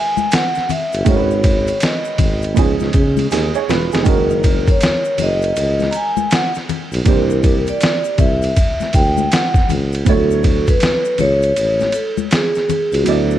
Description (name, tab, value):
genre	hip hop, jazz-hop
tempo	80 BPM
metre	4/4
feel	swing 64% on 16ths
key	unclear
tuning	A4 = 440 Hz
part	vibraphone with soft mallets	melody	0.0-13.4 s	F#4 to A#5	-19 LUFS	equal	none
part	dark upright piano	accompaniment	0.0-13.4 s	D#3 to D5	-23 LUFS	right 11 dB	none
part	congas and tube shaker	percussion	0.2-13.4 s	none	-26 LUFS	left 12 dB	none
part	trip hop sampler-style drum kit	drums	0.3-13.3 s	hi-hat, kick drum, ride cymbal, snare drum	-17 LUFS	equal	overdrive
part	warm tuba	bass	0.9-13.4 s	E1 to C#3	-18 LUFS	equal	none
room	studio reverb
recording	dark, warm production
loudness	-13 LUFS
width	side -12 dB against mid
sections	0.0-13.4 A section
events	drum fill 3.3-4.1; kick muted 13.1-13.4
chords	0.0 Emaj7; 1.1 G#m7; 2.6 C#9; 4.1 F#69; 7.1 C9; 10.1 Dmaj9